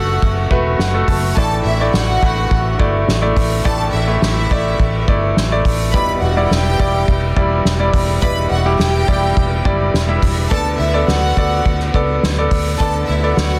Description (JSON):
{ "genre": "piano-driven pop", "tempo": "105 BPM", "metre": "4/4", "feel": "straight", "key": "unclear", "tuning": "A4 = 440 Hz", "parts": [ { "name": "rich studio violin section", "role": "second line", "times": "0.0-13.6 s", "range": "E4 to B5", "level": "-24 LUFS", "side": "equal", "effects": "none" }, { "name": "bright concert grand piano", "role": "accompaniment", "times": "0.0-13.6 s", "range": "A2 to A5", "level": "-21 LUFS", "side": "equal", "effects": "none" }, { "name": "vintage muted fingered electric bass", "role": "bass", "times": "0.0-13.6 s", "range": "E1 to D2", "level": "-21 LUFS", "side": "equal", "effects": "none" }, { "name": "soft-mallet drum kit", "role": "drums", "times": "0.2-13.5 s", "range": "hi-hat, kick drum, ride cymbal, snare drum", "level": "-21 LUFS", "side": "equal", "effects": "none" } ], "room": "studio reverb", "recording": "dense, heavily limited modern master", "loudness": "-16 LUFS", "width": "mono", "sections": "0.0-13.6 A section", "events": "grand piano fill 0.2-1.4", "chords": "0.0 F#m7; 1.4 Asus4; 5.9 Em7; 10.5 Bm7" }